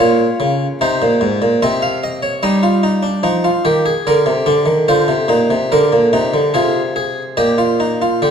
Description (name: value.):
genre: classical, baroque-style 3-part fugue for harpsichord.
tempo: 73 BPM.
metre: 4/4.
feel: straight.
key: unclear.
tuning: A4 = 440 Hz.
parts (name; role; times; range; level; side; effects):
harpsichord; solo; 0.0-8.3 s; Ab2 to F5; -12 LUFS; equal; none.
room: wet recital hall reverb, RT60 1.7 s.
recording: dark, warm production.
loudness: -13 LUFS.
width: side -7 dB against mid.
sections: 0.0-8.3 A section.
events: none.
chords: 0.0 Eb7(no3) (rootless); 0.8 Ab; 2.4 Eb/G; 4.1 Bb; 5.7 Bb7; 7.4 Eb/Bb.